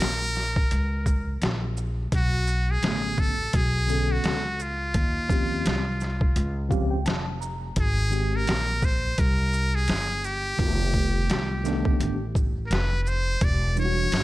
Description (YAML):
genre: hip hop, jazz-hop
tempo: 85 BPM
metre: 4/4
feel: swing 59% on 16ths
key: unclear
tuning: A4 = 438 Hz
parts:
  - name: trumpet with metal mute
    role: melody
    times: 0.0-14.2 s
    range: E#4 to D5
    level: -28 LUFS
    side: equal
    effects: none
  - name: mellow tine electric piano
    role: accompaniment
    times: 0.0-14.2 s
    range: D3 to A#5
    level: -30 LUFS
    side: equal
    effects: medium stereo tremolo
  - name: upright bass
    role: bass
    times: 0.0-14.2 s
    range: E1 to D#2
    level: -27 LUFS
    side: equal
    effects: none
  - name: trip hop sampler-style drum kit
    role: drums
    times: 0.0-14.2 s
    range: hi-hat, kick drum, shaker, snare drum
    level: -26 LUFS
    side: equal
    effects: overdrive
room: little or no reverb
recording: none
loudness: -22 LUFS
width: side -17 dB against mid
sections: 0.0-2.1 A section; 2.1-14.2 A section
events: tine electric piano fill 6.4-7.8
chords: 0.0 F# (rootless); 2.1 Bm9; 4.9 D#13; 7.8 G#maj7; 10.6 F7#11; 13.4 Em9